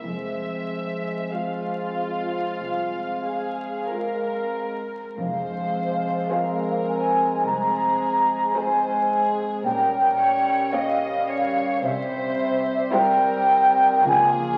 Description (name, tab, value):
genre	classical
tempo	46-56 BPM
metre	4/4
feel	rubato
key	F minor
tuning	A4 = 441 Hz
part	dark studio violin section	melody	0.0-14.6 s	Ab4 to F5	-33 LUFS	equal	none
part	warm French horn section	sustained chords	0.0-14.6 s	G3 to F4	-31 LUFS	equal	none
part	concert harp	arpeggios	0.0-14.6 s	Bb2 to Ab5	-40 LUFS	equal	none
part	dark studio cello section	bass	0.0-14.6 s	C2 to Db3	-39 LUFS	equal	none
part	dark studio double bass section	bass	0.0-14.6 s	F1 to Db2	-44 LUFS	equal	none
part	dark studio violin section	second line	1.3-13.8 s	F4 to Db5	-33 LUFS	equal	none
part	dark chamber viola section	accompaniment	1.3-13.8 s	G3 to F4	-36 LUFS	equal	none
part	mellow hollow small flute group	second line	5.2-14.6 s	E5 to Bb5	-23 LUFS	equal	none
part	timpani	percussion	5.2-6.8 s	F2	-44 LUFS	equal	none
room	wet scoring stage reverb, RT60 1.8 s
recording	very old 78 rpm record, vinyl crackle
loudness	-23 LUFS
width	mono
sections	0.0-5.2 A section; 5.2-14.6 A section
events	none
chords	0.0 Fm; 9.6 Gdim/Bb; 11.8 C; 14.0 Db6